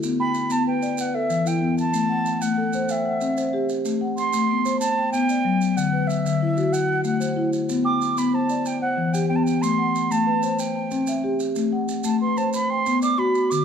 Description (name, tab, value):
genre	southern african traditional, mbira-style interlocking cycle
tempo	125 BPM (dotted quarters)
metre	12/8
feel	straight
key	A dorian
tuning	A4 = 445 Hz
part	marimba with soft mallets	arpeggios	0.0-13.6 s	D3 to A5	-22 LUFS	left 2 dB	none
part	maracas	percussion	0.0-13.6 s	none	-37 LUFS	right 8 dB	none
part	mellow concert flute	melody	0.2-13.6 s	E5 to D6	-25 LUFS	right 3 dB	none
room	moderate recital hall reverb, RT60 1.5 s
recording	dark, warm production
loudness	-20 LUFS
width	side -7 dB against mid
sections	0.0-3.9 A section; 3.9-13.6 B section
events	none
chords	0.0 Bm; 1.0 Em; 1.9 Am; 2.9 C; 3.9 Am; 4.8 Bm; 5.8 D; 6.7 Am; 7.7 Bm; 8.7 Em; 9.6 Am; 10.6 C; 11.6 Am; 12.5 Bm